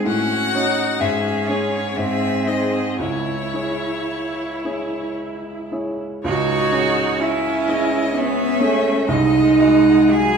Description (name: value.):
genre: classical, slow romantic movement for piano quartet.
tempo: 54-65 BPM.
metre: 3/4.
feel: rubato.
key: C# minor.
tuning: A4 = 440 Hz.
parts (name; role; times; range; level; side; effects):
clear cello; second line; 0.0-10.4 s; C#4 to G#4; -20 LUFS; right 3 dB; none.
clear baby grand piano; accompaniment; 0.0-10.4 s; B#1 to D#5; -23 LUFS; equal; none.
rich viola; accompaniment; 0.0-10.4 s; F#3 to E4; -25 LUFS; equal; none.
rich violin; melody; 0.1-10.4 s; C#5 to G#5; -26 LUFS; left 5 dB; none.
room: wet recital hall reverb, RT60 1.4 s.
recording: heard from further back in the room.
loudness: -17 LUFS.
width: side -6 dB against mid.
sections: 0.0-6.2 A section; 6.2-10.4 B section.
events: none.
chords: 0.1 F#m/A; 1.0 C#m/G#; 2.0 G#; 3.0 C#m; 9.1 G#7/B#.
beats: | 0.06 1.01 1.98 | 3.01 4.10 5.19 | 6.23 7.19 8.14 | 9.07 10.11.